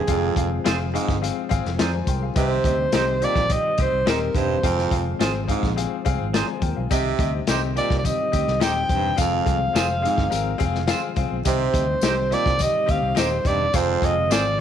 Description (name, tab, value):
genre	uptempo 1960s-style soul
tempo	106 BPM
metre	4/4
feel	straight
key	C minor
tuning	A4 = 440 Hz
part	warm alto saxophone	melody	0.0-14.6 s	Ab4 to G5	-23 LUFS	right 1 dB	none
part	mellow tonewheel organ	sustained chords	0.0-14.6 s	Eb3 to C4	-32 LUFS	left 10 dB	slow rotary speaker, chorus vibrato
part	bright baritone saxophone	riff	0.0-14.1 s	F2 to C3	-28 LUFS	right 11 dB	none
part	clear grand piano	accompaniment	0.1-14.6 s	C3 to C6	-29 LUFS	left 11 dB	none
part	fingered electric bass	bass	0.1-14.6 s	Eb1 to F2	-26 LUFS	right 1 dB	none
part	crunchy breakbeat drum kit	drums	0.1-14.4 s	hi-hat, kick drum, snare drum	-25 LUFS	left 2 dB	none
part	clean electric guitar	stabs	0.6-14.4 s	C4 to C5	-31 LUFS	right 11 dB	none
part	tambourine	percussion	6.9-14.4 s	none	-36 LUFS	left 10 dB	none
room	light reverb, small room ambience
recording	1960s-style stereo with parts hard left and right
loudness	-19 LUFS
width	side -9 dB against mid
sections	0.0-14.6 A section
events	grand piano fill 0.7-2.4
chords	0.1 Fm; 2.4 Cm; 4.6 Fm; 6.9 Cm; 9.2 Fm; 11.5 Cm; 13.7 Fm